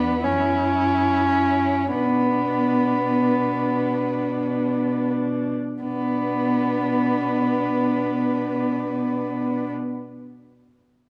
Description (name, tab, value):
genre	classical, slow romantic movement for string quartet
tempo	28-38 BPM (dotted quarters)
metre	6/8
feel	rubato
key	B minor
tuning	A4 = 441 Hz
part	warm violin	melody	0.0-9.7 s	B4 to C#5	-34 LUFS	equal	none
part	warm violin	second line	0.0-9.7 s	B3 to C#4	-26 LUFS	equal	none
part	warm viola	accompaniment	0.0-9.7 s	D4 to E4	-29 LUFS	equal	none
part	rich cello	bass	0.0-9.7 s	E2 to B2	-29 LUFS	equal	none
room	wet recital hall reverb, RT60 1.8 s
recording	dark, warm production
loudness	-22 LUFS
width	mono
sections	0.0-5.8 A section; 5.8-9.8 B section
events	slowing down 0.0-5.8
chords	0.2 F#5; 1.9 Bm